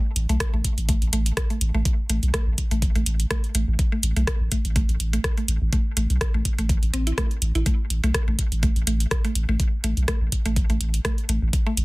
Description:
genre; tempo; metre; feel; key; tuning
minimal techno; 124 BPM; 4/4; swing 55% on 16ths; unclear; A4 = 440 Hz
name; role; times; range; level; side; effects
punchy sub bass; bass; 0.2-11.8 s; A1 to B1; -22 LUFS; equal; sidechain pumping
garage drum kit; drums; 0.2-11.8 s; hi-hat, rim click; -28 LUFS; equal; soft clipping on snare
mallet-like synth pluck; riff; 0.3-11.7 s; A3 to E4; -30 LUFS; equal; chorus, sidechain pumping, dub echo
electronic kick drum; drums; 0.4-11.6 s; none; -23 LUFS; equal; none
room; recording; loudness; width
little or no reverb; dense, heavily limited modern master; -20 LUFS; side -22 dB against mid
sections
0.0-11.8 A section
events
none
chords
none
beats
0.40 0.89 1.37 | 1.85 2.34 2.82 3.31 | 3.79 4.27 4.76 5.24 | 5.73 6.21 6.69 7.18 | 7.66 8.14 8.63 9.11 | 9.60 10.08 10.56 11.05 | 11.53

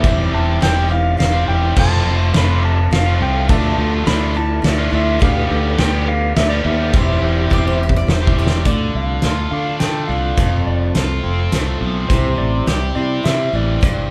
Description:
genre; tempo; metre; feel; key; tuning
folk rock and heartland rock; 104 BPM; 3/4; straight; unclear; A4 = 441 Hz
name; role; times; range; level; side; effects
clean lap steel guitar; melody; 0.0-14.1 s; C5 to B5; -26 LUFS; equal; none
barky reed electric piano; accompaniment; 0.0-8.6 s; E4 to F5; -34 LUFS; equal; none
picked steel-string acoustic guitar; accompaniment; 0.0-14.1 s; C3 to C5; -29 LUFS; equal; none
mellow tonewheel organ; sustained chords; 0.0-14.1 s; C4 to F5; -33 LUFS; equal; none
biting overdriven guitar; riff; 0.0-14.1 s; F2 to G4; -26 LUFS; equal; none
fingered electric bass; bass; 0.0-14.1 s; E1 to D3; -20 LUFS; equal; none
loose indie drum kit; drums; 0.0-14.0 s; crash cymbal, hi-hat, kick drum, ride cymbal, snare drum; -21 LUFS; equal; none
bowl-back mandolin; second line; 7.5-8.7 s; G4 to D5; -30 LUFS; equal; none
room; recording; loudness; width
light reverb; band playing live in one room; -17 LUFS; mono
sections
0.0-8.7 A section; 8.7-14.1 B section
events
drum fill 7.5-8.7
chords
0.0 C/E; 1.8 F; 3.5 Dmadd9; 5.2 Gadd9/D; 6.9 C/E; 8.7 Dm; 10.4 F; 12.1 C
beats
| 0.05 0.62 1.20 | 1.77 2.35 2.92 | 3.50 4.07 4.64 | 5.21 5.79 6.36 | 6.93 7.51 8.08 | 8.65 9.23 9.80 | 10.38 10.96 11.53 | 12.11 12.68 13.26 | 13.83

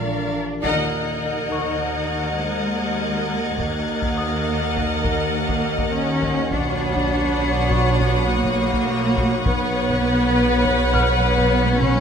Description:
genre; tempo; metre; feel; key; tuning
cinematic, suspense film score; 102 BPM; 5/4; straight; Eb minor; A4 = 435 Hz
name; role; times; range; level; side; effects
rich studio violin section; melody; 0.0-12.0 s; F5 to Gb5; -30 LUFS; left 3 dB; none
dark studio violin section; second line; 0.0-12.0 s; Bb4 to Eb5; -29 LUFS; equal; none
glass harmonica; sustained chords; 0.0-12.0 s; F4 to B5; -29 LUFS; equal; none
warm studio double bass section; bass; 0.0-12.0 s; Bb1 to Eb2; -25 LUFS; right 2 dB; none
metallic inharmonic drone; drone; 0.0-12.0 s; Bb1 to Eb2; -29 LUFS; left 1 dB; chorus, built-in reverb
clear baby grand piano; texture; 0.0-12.0 s; Db6 to F6; -32 LUFS; left 6 dB; none
warm studio violin section; texture; 0.0-12.0 s; C#6 to A6; -33 LUFS; left 4 dB; none
warm studio cello section; bass; 0.1-12.0 s; Ab3 to Eb4; -24 LUFS; equal; none
warm studio viola section; accompaniment; 0.6-12.0 s; F#4 to B4; -26 LUFS; right 1 dB; none
taiko ensemble; drums; 0.6-12.0 s; none; -28 LUFS; left 1 dB; none
room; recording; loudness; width
light reverb; none; -18 LUFS; side -7 dB against mid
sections
0.6-12.0 A section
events
band accent 0.6-1.2; drum fill 11.7-12.0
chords
0.0 Bb; 0.6 Ebm; 6.5 Bmadd9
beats
0.05 | 0.64 1.23 1.82 2.41 3.00 | 3.58 4.17 4.76 5.35 5.94 | 6.53 7.11 7.70 8.29 8.88 | 9.47 10.05 10.64 11.23 11.82

